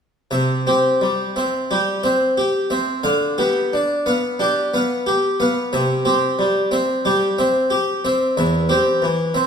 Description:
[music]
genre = classical, baroque-style suite movement for harpsichord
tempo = 90 BPM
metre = 4/4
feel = rubato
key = C major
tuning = A4 = 439 Hz
[part]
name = harpsichord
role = solo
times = 0.3-9.5 s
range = E2 to F5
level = -16 LUFS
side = equal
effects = none
[sound]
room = wet recital hall reverb, RT60 1.6 s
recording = recorded in a church or concert hall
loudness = -17 LUFS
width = side -7 dB against mid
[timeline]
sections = 0.3-9.5 A section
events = none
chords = 0.3 C; 3.0 G7/D; 5.7 C; 8.4 C/E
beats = | 0.32 1.02 1.71 2.38 | 3.05 3.73 4.39 5.06 | 5.73 6.39 7.05 7.72 | 8.38 9.02

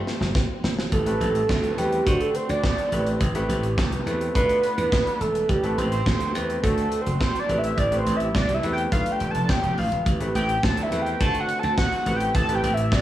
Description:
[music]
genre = early-eighties boogie funk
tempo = 105 BPM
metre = 4/4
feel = straight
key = A minor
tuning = A4 = 437 Hz
[part]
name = fat analog lead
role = melody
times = 0.0-13.0 s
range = F#4 to A5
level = -25 LUFS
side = right 1 dB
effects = chorus, slapback echo
[part]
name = clear concert grand piano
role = accompaniment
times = 0.0-12.8 s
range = A3 to D5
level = -30 LUFS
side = left 1 dB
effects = none
[part]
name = warm studio string section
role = sustained chords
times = 0.0-13.0 s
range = D3 to G4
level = -35 LUFS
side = right 1 dB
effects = none
[part]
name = modern studio drum kit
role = drums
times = 0.1-13.0 s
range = handclaps, hi-hat, kick drum, snare drum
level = -26 LUFS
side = equal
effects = gated reverb
[part]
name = slap bass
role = bass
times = 0.2-13.0 s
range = E1 to D3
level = -26 LUFS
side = right 1 dB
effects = none
[sound]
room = light reverb, small room ambience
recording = studio ambience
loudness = -21 LUFS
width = side -13 dB against mid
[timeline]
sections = 0.9-13.0 A section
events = drum fill 0.0-0.9; analog synth lead solo 0.9-13.0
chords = 0.0 G9sus4; 0.9 Am9; 2.1 D7; 2.9 Am9; 4.3 Bm7b5; 5.5 Am9; 6.6 D7; 7.5 Am9; 8.9 Bm7b5; 10.1 Am9; 11.2 D7; 12.1 Am9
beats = 0.35 | 0.92 1.49 2.06 2.63 | 3.21 3.78 4.35 4.92 | 5.49 6.06 6.63 7.21 | 7.78 8.35 8.92 9.49 | 10.06 10.63 11.21 11.78 | 12.35 12.92

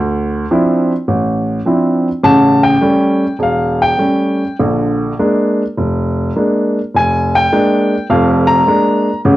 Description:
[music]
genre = solo jazz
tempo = 104 BPM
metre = 4/4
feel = swing 69% on 8ths, rubato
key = unclear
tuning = A4 = 440 Hz
[part]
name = warm upright piano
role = solo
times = 0.0-9.4 s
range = E1 to Bb5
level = -11 LUFS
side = equal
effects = none
[sound]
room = light reverb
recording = worn, warbling old tape, cassette tape, warbly pitch drift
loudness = -11 LUFS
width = side -16 dB against mid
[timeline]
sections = 0.0-9.4 A section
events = upright piano solo 0.0-9.4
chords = 0.0 Dm9; 2.2 A7; 4.6 Bb7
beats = 0.51 1.08 1.65 | 2.24 2.82 3.40 3.99 | 4.59 5.19 5.78 6.37 | 6.95 7.52 8.10 8.68 | 9.24

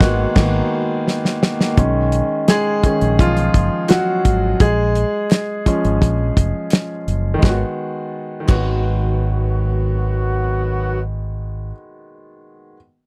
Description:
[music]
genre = lush 1970s-style soul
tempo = 85 BPM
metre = 4/4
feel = straight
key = G# dorian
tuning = A4 = 440 Hz
[part]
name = warm tenor saxophone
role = melody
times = 0.0-1.0 s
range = F#4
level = -29 LUFS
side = equal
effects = none
[part]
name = clear baby grand piano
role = accompaniment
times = 0.0-12.8 s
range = D#3 to G#4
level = -22 LUFS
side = equal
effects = none
[part]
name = fingered electric bass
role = bass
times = 0.0-11.7 s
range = E#1 to B1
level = -21 LUFS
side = equal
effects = none
[part]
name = damped 70s drum kit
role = drums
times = 0.0-8.7 s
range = crash cymbal, hi-hat, kick drum, snare drum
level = -17 LUFS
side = equal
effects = none
[part]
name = group handclap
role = percussion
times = 2.5-8.7 s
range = none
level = -37 LUFS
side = equal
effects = none
[part]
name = mellow horn section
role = stabs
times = 7.4-11.0 s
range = D#3 to F#4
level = -27 LUFS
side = equal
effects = none
[sound]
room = little or no reverb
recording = dry, close 1970s-style studio recording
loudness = -18 LUFS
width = mono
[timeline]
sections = 0.0-1.8 A section; 1.8-7.4 B section; 7.4-10.3 C section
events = band accent 0.0-1.8; drum fill 1.1-1.8; grand piano solo 1.8-7.4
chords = 0.0 G#m9; 1.8 B69; 4.6 A#m7; 7.4 G#m7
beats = 0.36 1.07 | 1.77 2.48 3.19 3.89 | 4.60 5.31 6.01 6.72 | 7.43 8.13 8.84 9.54

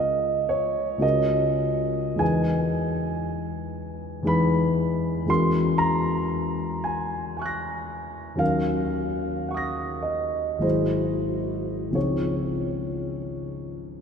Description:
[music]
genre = classical, impressionist solo piano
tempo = 41-60 BPM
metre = 3/4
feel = rubato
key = unclear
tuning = A4 = 440 Hz
[part]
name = dark concert grand piano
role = solo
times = 0.0-14.0 s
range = Ab1 to Bb6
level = -23 LUFS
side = equal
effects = none
[sound]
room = wet cathedral reverb, RT60 5.2 s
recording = in a vast, echoing space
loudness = -23 LUFS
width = side -6 dB against mid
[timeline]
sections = 0.0-14.0 A section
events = none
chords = 0.0 Bbm7/Db; 1.0 Gb69/Db; 2.2 Emaj7; 5.3 Gbadd9/Fb; 8.4 Ebm7; 10.6 Abaug7; 12.0 Dbmaj9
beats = 1.03 | 2.21 3.27 4.28 | 5.29 6.33 7.36 | 8.40 9.48 10.64 | 11.95 13.30

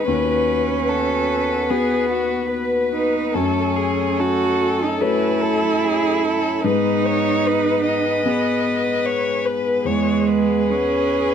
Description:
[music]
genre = neoclassical piano and strings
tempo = 74 BPM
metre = 4/4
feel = rubato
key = unclear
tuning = A4 = 438 Hz
[part]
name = muted violin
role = melody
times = 0.0-11.3 s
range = F#4 to D#5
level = -23 LUFS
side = left 5 dB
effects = none
[part]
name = muted cello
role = second line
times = 0.0-11.3 s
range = G#3 to F#4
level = -21 LUFS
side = right 6 dB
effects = none
[part]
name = muted viola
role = accompaniment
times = 0.0-11.3 s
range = G#4 to B4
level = -26 LUFS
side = equal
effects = none
[part]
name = warm upright piano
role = accompaniment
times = 0.0-11.3 s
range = D#2 to C#5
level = -24 LUFS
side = left 5 dB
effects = none
[part]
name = pedal harmonium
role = sustained chords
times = 0.0-11.3 s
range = A3 to G#5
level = -30 LUFS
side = right 1 dB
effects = none
[sound]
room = light reverb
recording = close, detailed microphones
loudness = -17 LUFS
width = side -8 dB against mid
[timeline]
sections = 0.0-11.3 A section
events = none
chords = 0.1 Badd9/D#; 3.3 F#madd9; 6.6 G#m; 9.8 E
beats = | 0.07 0.89 1.70 2.52 | 3.35 4.20 5.01 5.83 | 6.64 7.45 8.25 9.04 | 9.85 10.69

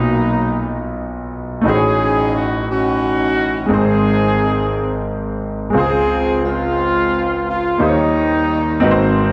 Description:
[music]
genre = gospel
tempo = 58 BPM (dotted quarters)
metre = 6/8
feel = straight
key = Db major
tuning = A4 = 440 Hz
[part]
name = warm horn section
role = melody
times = 0.0-9.2 s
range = Gb3 to Ab4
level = -20 LUFS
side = equal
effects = none
[part]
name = clear grand piano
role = accompaniment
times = 0.0-9.3 s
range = Ab1 to Cb6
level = -20 LUFS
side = equal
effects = none
[sound]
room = wet scoring stage reverb, RT60 1.4 s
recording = dark, warm production, nothing above 10.3 kHz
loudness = -17 LUFS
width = mono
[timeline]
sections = 0.0-9.3 A section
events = none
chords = 0.0 Cbmaj7; 1.6 Gbm6/A; 3.7 Ab; 5.7 Dbmaj7; 7.8 Eb7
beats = 0.62 | 1.64 2.67 | 3.69 4.72 | 5.75 6.78 | 7.80 8.83

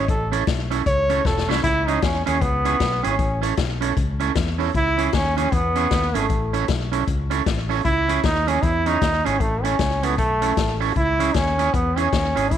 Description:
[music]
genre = ska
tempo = 154 BPM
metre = 4/4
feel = swing 62% on 8ths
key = C# minor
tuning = A4 = 440 Hz
[part]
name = warm flugelhorn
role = melody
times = 0.0-1.5 s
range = A4 to C#5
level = -23 LUFS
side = equal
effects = none
[part]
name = electric guitar at the edge of break-up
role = accompaniment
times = 0.0-12.5 s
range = C#4 to C#5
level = -25 LUFS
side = right 10 dB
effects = none
[part]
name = fingered electric bass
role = bass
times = 0.0-12.6 s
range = E1 to E2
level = -25 LUFS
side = left 1 dB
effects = none
[part]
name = vintage drum kit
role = drums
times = 0.1-12.6 s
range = hi-hat, kick drum, snare drum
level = -24 LUFS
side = left 3 dB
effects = slapback echo
[part]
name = bright trombone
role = melody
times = 1.6-12.6 s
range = A3 to E4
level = -22 LUFS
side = right 1 dB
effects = none
[sound]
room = light reverb, small room ambience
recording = 1960s-style stereo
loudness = -18 LUFS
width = side -10 dB against mid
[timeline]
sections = 0.0-1.6 A section; 1.6-12.6 B section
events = flugelhorn solo 0.0-1.6; drum fill 1.2-1.6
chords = 0.1 A; 1.6 C#m; 3.2 A; 4.7 C#m; 6.3 A; 7.9 C#m; 9.4 A; 11.0 C#m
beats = | 0.08 0.47 0.86 1.25 | 1.64 2.03 2.41 2.80 | 3.19 3.58 3.97 4.36 | 4.74 5.13 5.52 5.91 | 6.30 6.69 7.08 7.46 | 7.85 8.24 8.63 9.02 | 9.40 9.79 10.18 10.57 | 10.96 11.35 11.73 12.12 | 12.51

